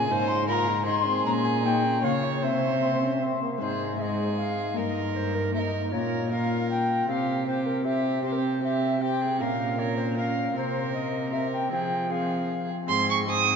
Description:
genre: classical, renaissance-style consort dance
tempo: 155 BPM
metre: 3/4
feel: straight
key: unclear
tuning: A4 = 440 Hz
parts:
  - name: mellow tenor recorder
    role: melody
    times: 0.0-13.6 s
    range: Ab4 to C6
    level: -29 LUFS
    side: left 3 dB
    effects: none
  - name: rich violin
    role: second line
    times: 0.0-13.6 s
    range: G4 to Eb6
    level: -30 LUFS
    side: right 7 dB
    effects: none
  - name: Celtic harp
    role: accompaniment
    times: 0.0-13.6 s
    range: G2 to Db5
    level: -32 LUFS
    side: left 6 dB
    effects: none
  - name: warm trombone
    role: accompaniment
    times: 0.0-13.6 s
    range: Bb3 to F4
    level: -32 LUFS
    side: equal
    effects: none
  - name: rich cello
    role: bass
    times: 0.0-13.6 s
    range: G2 to F3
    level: -30 LUFS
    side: right 2 dB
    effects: none
room: wet cathedral reverb, RT60 4.5 s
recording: nothing above 7.6 kHz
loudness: -24 LUFS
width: side -6 dB against mid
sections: 0.0-3.6 A section; 3.6-12.9 B section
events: none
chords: 0.1 Ab; 1.3 Bbm; 2.4 C; 3.6 Ab; 4.8 Eb/G; 5.9 Bbm; 7.1 Csus4; 7.9 C; 9.4 Bbm; 10.6 C7sus4; 11.3 C7; 11.7 Fm; 12.9 Ab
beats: | 0.10 0.49 0.88 | 1.26 1.65 2.04 | 2.43 2.82 3.22 | 3.61 4.00 4.39 | 4.77 5.16 5.55 | 5.93 6.32 6.70 | 7.09 7.47 7.86 | 8.24 8.63 9.01 | 9.40 9.78 10.17 | 10.55 10.94 11.33 | 11.72 12.11 12.50 | 12.89 13.28

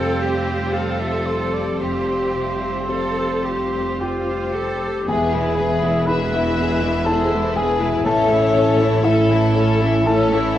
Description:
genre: cinematic, emotional film score for orchestra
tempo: 52-62 BPM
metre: 3/4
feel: rubato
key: unclear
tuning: A4 = 440 Hz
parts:
  - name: rich studio violin section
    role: second line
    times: 0.0-10.6 s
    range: F4 to E5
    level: -28 LUFS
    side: left 4 dB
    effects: none
  - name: warm cor anglais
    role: second line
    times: 0.0-10.6 s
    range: E4 to G5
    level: -27 LUFS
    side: right 2 dB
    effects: none
  - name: dark concert grand piano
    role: accompaniment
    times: 0.0-10.6 s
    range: E2 to B5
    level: -25 LUFS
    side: left 2 dB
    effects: none
  - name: rich studio viola section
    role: accompaniment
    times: 0.0-10.6 s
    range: E3 to C#4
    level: -27 LUFS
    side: right 1 dB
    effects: none
  - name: concert harp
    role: arpeggios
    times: 0.0-10.6 s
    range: E2 to E6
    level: -27 LUFS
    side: left 3 dB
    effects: none
  - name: rich studio cello section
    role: bass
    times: 0.0-10.6 s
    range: E2 to A4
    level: -25 LUFS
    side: right 2 dB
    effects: none
  - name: warm studio double bass section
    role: bass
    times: 0.0-10.6 s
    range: E1 to A1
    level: -26 LUFS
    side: right 2 dB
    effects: none
  - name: mellow clarinet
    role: second line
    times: 4.0-10.6 s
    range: E4 to B4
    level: -26 LUFS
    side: left 1 dB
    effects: none
  - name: rich studio violin section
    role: melody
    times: 5.1-10.6 s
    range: E4 to A4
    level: -24 LUFS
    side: left 2 dB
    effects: none
  - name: mellow French horn section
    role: sustained chords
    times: 5.1-10.6 s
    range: B2 to E4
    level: -26 LUFS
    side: left 3 dB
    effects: none
room: wet scoring stage reverb, RT60 1.8 s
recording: worn, warbling old tape, cassette tape, warbly pitch drift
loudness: -17 LUFS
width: side -12 dB against mid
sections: 0.0-5.1 A section; 5.1-10.6 B section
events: none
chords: 0.0 Fsus2; 5.1 E; 8.1 A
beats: 0.74 | 1.80 2.89 4.01 | 5.09 6.09 7.08 | 8.06 9.04 10.07

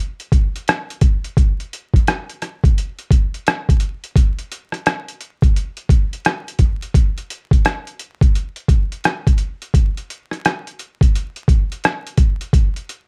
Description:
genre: hip hop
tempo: 86 BPM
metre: 4/4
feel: swing 63% on 16ths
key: none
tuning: none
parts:
  - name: boom bap sampler-style drum kit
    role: drums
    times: 0.2-13.1 s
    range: hi-hat, kick drum, rim click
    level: -17 LUFS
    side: equal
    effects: none
room: little or no reverb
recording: vinyl crackle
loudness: -18 LUFS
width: mono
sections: 0.0-13.1 A section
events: none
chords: none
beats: 0.67 | 1.37 2.07 2.77 3.46 | 4.16 4.86 5.56 6.25 | 6.95 7.65 8.35 9.04 | 9.74 10.44 11.14 11.84 | 12.53

